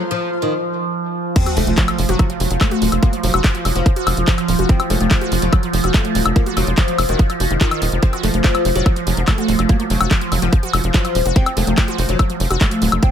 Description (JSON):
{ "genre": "psychedelic trance", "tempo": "144 BPM", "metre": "4/4", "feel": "straight", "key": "unclear", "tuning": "A4 = 437 Hz", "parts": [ { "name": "overtone-sweeping drone", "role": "sustained chords", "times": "0.0-13.1 s", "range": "F3", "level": "-24 LUFS", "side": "right 3 dB", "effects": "chorus, built-in reverb, phaser, sidechain pumping" }, { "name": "clear studio string section", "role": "texture", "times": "0.0-0.5 s", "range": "F4 to C6", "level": "-34 LUFS", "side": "left 3 dB", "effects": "sidechain pumping" }, { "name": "oud", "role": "melody", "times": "0.1-13.1 s", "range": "Eb3 to C4", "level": "-22 LUFS", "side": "left 1 dB", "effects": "phaser, sidechain pumping, tape echo" }, { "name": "wide unison pluck", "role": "riff", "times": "1.4-13.1 s", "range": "Eb3 to Gb4", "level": "-25 LUFS", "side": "right 1 dB", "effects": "auto-pan, sidechain pumping, tape echo" }, { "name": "drum and bass drum kit", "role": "drums", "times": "1.4-13.1 s", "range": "crash cymbal, handclaps, hi-hat, woodblock", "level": "-22 LUFS", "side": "left 2 dB", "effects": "overdrive" }, { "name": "electronic kick drum", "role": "drums", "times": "1.4-13.1 s", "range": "none", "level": "-15 LUFS", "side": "equal", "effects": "none" }, { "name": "sub drop", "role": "sound effects", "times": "1.4-3.0 s", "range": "none", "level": "-26 LUFS", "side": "equal", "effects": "none" }, { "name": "tight sequencer bass", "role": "bass", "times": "1.6-13.0 s", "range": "Eb1 to F1", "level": "-19 LUFS", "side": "equal", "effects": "none" } ], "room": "digital ambience", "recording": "none", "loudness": "-14 LUFS", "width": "side -9 dB against mid", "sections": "0.0-1.4 A section; 1.4-13.1 B section", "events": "drop 1.4-13.1; impact 1.4-3.0", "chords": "0.0 F5; 1.4 Ebmadd9 (rootless)" }